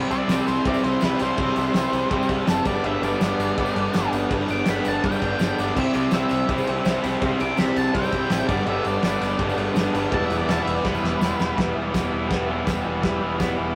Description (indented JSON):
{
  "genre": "garage rock duo or trio",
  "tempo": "165 BPM",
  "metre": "4/4",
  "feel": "straight",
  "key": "E minor",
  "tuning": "A4 = 440 Hz",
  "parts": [
    { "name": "overdriven combo organ", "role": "sustained chords", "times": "0.0-13.8 s", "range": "D4 to D5", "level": "-38 LUFS", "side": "equal", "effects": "none" },
    { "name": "raw garage guitar", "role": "riff", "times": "0.0-13.8 s", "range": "G2 to E4", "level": "-25 LUFS", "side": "equal", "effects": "overdrive" },
    { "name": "growling picked electric bass", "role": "bass", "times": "0.0-13.7 s", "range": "E1 to C2", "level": "-34 LUFS", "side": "equal", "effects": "overdrive" },
    { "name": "octave-fuzz lead guitar", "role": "melody", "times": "0.1-11.6 s", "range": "A4 to D6", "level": "-31 LUFS", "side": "equal", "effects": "distortion" },
    { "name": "cloth-damped thuddy drum kit", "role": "drums", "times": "0.1-13.5 s", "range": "crash cymbal, kick drum, ride cymbal, snare drum", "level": "-29 LUFS", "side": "equal", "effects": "none" },
    { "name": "tambourine", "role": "percussion", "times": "0.1-13.5 s", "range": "none", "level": "-48 LUFS", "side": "equal", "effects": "none" }
  ],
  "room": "moderate stone room reverb, RT60 1.0 s",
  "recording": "rough rehearsal-room recording, tube saturation",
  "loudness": "-23 LUFS",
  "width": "mono",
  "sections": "0.0-11.6 A section; 11.6-13.8 B section",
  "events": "lead electric guitar solo 0.0-11.6; drum fill 10.8-11.6",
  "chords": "0.0 C; 2.7 G; 5.8 C; 8.5 G; 10.1 Em"
}